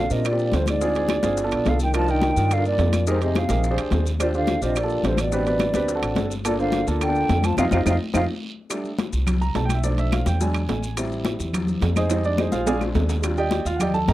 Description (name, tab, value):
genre	Afro-Cuban jazz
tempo	213 BPM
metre	4/4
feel	straight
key	unclear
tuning	A4 = 440 Hz
part	mellow hollow silver concert flute	melody	0.0-8.2 s	C5 to A5	-25 LUFS	right 3 dB	none
part	growling trombone	second line	0.0-8.2 s	G2 to F3	-28 LUFS	left 4 dB	none
part	warm grand piano	accompaniment	0.0-14.1 s	F3 to Bb5	-26 LUFS	right 1 dB	none
part	upright bass	bass	0.0-14.1 s	G1 to Bb2	-24 LUFS	equal	none
part	bongos	percussion	0.1-14.1 s	none	-34 LUFS	left 6 dB	none
part	congas	percussion	0.1-14.1 s	none	-28 LUFS	left 3 dB	none
part	guiro	percussion	0.1-14.1 s	none	-42 LUFS	right 5 dB	none
part	maracas	percussion	0.1-14.1 s	none	-38 LUFS	left 7 dB	none
part	claves	percussion	0.3-13.9 s	none	-36 LUFS	right 6 dB	none
part	timbales	percussion	0.3-14.1 s	none	-30 LUFS	right 6 dB	none
room	little or no reverb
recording	dry, close 1970s-style studio recording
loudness	-20 LUFS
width	side -15 dB against mid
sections	0.0-8.7 A section; 8.7-14.1 B section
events	drum fill 7.6-8.7, 12.1-13.2; band accent 7.6-8.7; grand piano solo 8.7-14.1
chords	0.0 Bb6; 0.8 Dm7b5; 1.4 G7; 1.9 Cm11; 3.1 Fm11; 3.6 Bb13; 4.2 Ebmaj13; 5.3 Am11; 5.9 D7; 6.5 Gm9; 7.6 F5; 8.7 Am11; 9.8 Bm7b5; 10.4 E7; 11.0 Am7; 12.1 Fm7; 12.7 Bb7; 13.2 Ebmaj7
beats	0.25 0.54 | 0.82 1.10 1.38 1.66 | 1.94 2.23 2.51 2.79 | 3.07 3.35 3.63 3.92 | 4.20 4.48 4.76 5.04 | 5.32 5.61 5.89 6.17 | 6.45 6.73 7.01 7.30 | 7.58 7.86 8.14 8.43 | 8.71 8.99 9.28 9.56 | 9.84 10.12 10.41 10.69 | 10.97 11.26 11.54 11.82 | 12.10 12.39 12.67 12.95 | 13.23 13.52 13.80 14.08